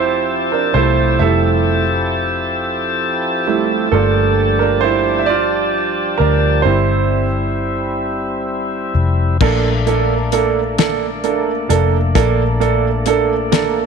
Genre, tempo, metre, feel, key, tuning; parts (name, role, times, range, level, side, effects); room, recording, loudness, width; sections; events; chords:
six-eight pop ballad; 44 BPM (dotted quarters); 6/8; straight; A4 = 440 Hz
bright concert grand piano; accompaniment; 0.0-13.8 s; G3 to E5; -17 LUFS; right 10 dB
percussive tonewheel organ; sustained chords; 0.0-13.9 s; F3 to A5; -20 LUFS; left 2 dB; overdrive, slow rotary speaker
vintage muted fingered electric bass; bass; 0.0-13.9 s; F1 to D2; -18 LUFS; left 3 dB
damped 70s drum kit; drums; 9.4-13.7 s; crash cymbal, hi-hat, kick drum, snare drum; -20 LUFS; left 7 dB
moderate echo chamber reverb, RT60 2.1 s; 1960s-style stereo with parts hard left and right; -14 LUFS; side -6 dB against mid
0.0-9.4 A section; 9.4-13.9 B section
grand piano solo 0.0-9.4
0.0 Fmaj7; 3.9 Gm7; 6.7 C/G; 9.4 Bbmaj7